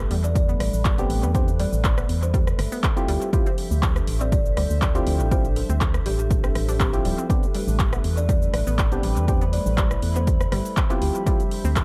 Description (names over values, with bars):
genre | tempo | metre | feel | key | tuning
deep house | 121 BPM | 4/4 | swing 53% on 16ths | A minor | A4 = 440 Hz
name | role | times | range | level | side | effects
hollow soft pad | sustained chords | 0.0-11.8 s | F3 to E5 | -38 LUFS | equal | ensemble chorus, sidechain pumping
organ-like FM bass | bass | 0.0-11.8 s | D1 to E2 | -26 LUFS | equal | sidechain pumping
warbly tape-like pad | texture | 0.0-11.8 s | D4 to B5 | -38 LUFS | equal | chorus, built-in reverb, sidechain pumping
analog pluck | arpeggios | 0.1-11.7 s | G3 to D4 | -38 LUFS | equal | chorus, sidechain pumping, analog delay
deep house drum kit | drums | 0.1-11.8 s | handclaps, hi-hat, rim click, shaker | -33 LUFS | equal | overdrive, analog delay
kalimba | melody | 0.2-11.4 s | G4 to D5 | -34 LUFS | equal | tape echo
electronic kick drum | drums | 0.4-11.8 s | none | -25 LUFS | equal | overdrive
percussive organ stab | stabs | 1.0-11.4 s | B3 to G4 | -32 LUFS | equal | chorus, sidechain pumping, analog delay
room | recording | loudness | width
digital ambience | echo-heavy mix | -22 LUFS | mono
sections
0.0-11.8 A section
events
none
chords
0.0 Am11; 3.1 Dm11; 7.3 Am11; 11.0 Dm11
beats
0.36 0.85 | 1.35 1.84 2.34 2.83 | 3.33 3.83 4.32 4.82 | 5.32 5.81 6.31 6.80 | 7.30 7.79 8.29 8.79 | 9.28 9.78 10.27 10.77 | 11.27 11.76